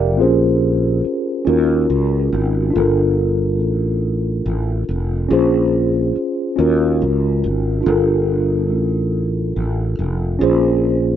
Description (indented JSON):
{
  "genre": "slow six-eight R&B",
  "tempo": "47 BPM (dotted quarters)",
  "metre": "6/8",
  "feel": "straight",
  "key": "unclear",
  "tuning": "A4 = 439 Hz",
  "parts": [
    { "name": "mellow tine electric piano", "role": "accompaniment", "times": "0.0-11.2 s", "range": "B#3 to G5", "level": "-17 LUFS", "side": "equal", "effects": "medium stereo tremolo" },
    { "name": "fretless electric bass", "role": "bass", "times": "0.0-11.2 s", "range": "F1 to D#2", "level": "-18 LUFS", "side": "equal", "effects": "lush chorus" }
  ],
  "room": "little or no reverb",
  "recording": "rough home demo mix, nothing above 7.7 kHz",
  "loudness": "-15 LUFS",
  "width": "side -10 dB against mid",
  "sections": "0.0-11.2 A section",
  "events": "none",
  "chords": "0.2 A#m9; 1.5 D#m9; 2.7 Gm9; 5.3 A#m9; 6.6 D#m9; 7.8 Gm9; 10.4 A#m9"
}